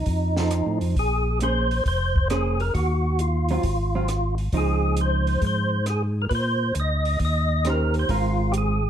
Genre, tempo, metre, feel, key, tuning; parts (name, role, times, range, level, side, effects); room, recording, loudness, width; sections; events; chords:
soul jazz organ trio; 135 BPM; 4/4; swing 68% on 8ths; Ab major; A4 = 440 Hz
percussive tonewheel organ; melody; 0.0-8.9 s; Eb4 to Eb5; -26 LUFS; equal; slow rotary speaker, overdrive, chorus vibrato
tonewheel organ; bass; 0.0-8.9 s; F1 to Bb2; -23 LUFS; equal; overdrive, stopped rotary speaker
compact cocktail drum kit; drums; 0.1-8.7 s; hi-hat, kick drum, rim click, snare drum; -28 LUFS; equal
hollow-body jazz guitar; accompaniment; 0.4-8.8 s; Eb3 to C5; -27 LUFS; right 4 dB
moderate studio reverb, RT60 0.8 s; dark, warm production; -21 LUFS; side -9 dB against mid
0.0-8.9 A section
0.1 F7; 1.0 Bbm9; 2.7 Ebmadd9; 3.6 Ab6; 4.5 Dbmaj9; 6.3 Bbsus24; 7.2 Eb6; 8.1 Ab69